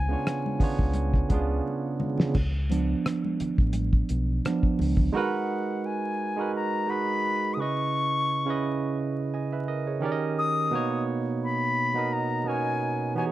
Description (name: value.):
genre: R&B, neo-soul.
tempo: 86 BPM.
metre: 4/4.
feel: swing 54% on 16ths.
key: unclear.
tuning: A4 = 440 Hz.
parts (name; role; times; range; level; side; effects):
concert flute; melody; 0.0-13.2 s; F#5 to D#6; -29 LUFS; left 3 dB; none.
barky tine electric piano; accompaniment; 0.0-13.3 s; B2 to G#5; -28 LUFS; right 4 dB; none.
deep dub fingered electric bass; bass; 0.0-5.1 s; A1 to C#2; -27 LUFS; equal; none.
cloth-damped thuddy drum kit; drums; 0.3-5.1 s; crash cymbal, hi-hat, kick drum, rim click, snare drum; -26 LUFS; equal; none.
congas; percussion; 0.5-5.1 s; none; -36 LUFS; left 3 dB; none.
room: light reverb, studio reverb.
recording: dark, warm production, vinyl crackle.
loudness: -24 LUFS.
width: side -14 dB against mid.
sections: 0.0-2.3 A section; 2.3-5.1 B section; 5.1-13.3 C section.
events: drum fill 1.6-2.3; tine electric piano solo 2.3-5.1.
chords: 0.0 C#7b9; 5.1 G#m9; 7.6 C#m7; 10.0 D#7; 10.7 Bmaj7.